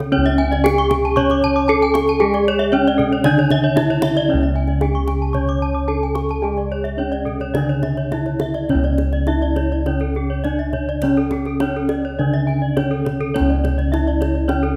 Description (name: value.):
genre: Balinese gamelan.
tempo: 103-115 BPM.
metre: 4/4.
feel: straight.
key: C# pelog.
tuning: A4 = 439 Hz.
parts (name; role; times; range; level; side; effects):
gamelan-type bronze metallophone; melody; 0.0-14.8 s; C#4 to C#5; -23 LUFS; equal; none.
gamelan-type bronze metallophone; accompaniment; 0.0-14.8 s; C#3 to C#4; -29 LUFS; equal; none.
gamelan-type bronze metallophone; arpeggios; 0.0-14.8 s; A4-20c to D6+20c; -28 LUFS; equal; none.
gamelan-type bossed gongs; bass; 0.0-14.8 s; C#2 to G#4-30c; -23 LUFS; equal; none.
kendang; percussion; 0.0-14.7 s; none; -30 LUFS; equal; none.
gamelan-type bronze metallophone; arpeggios; 0.1-14.6 s; G#4-30c to D6+20c; -28 LUFS; equal; none.
room: moderate recital hall reverb, RT60 1.4 s.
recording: none.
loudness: -18 LUFS.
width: mono.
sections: 0.1-8.7 A section; 8.7-14.8 B section.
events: none.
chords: none.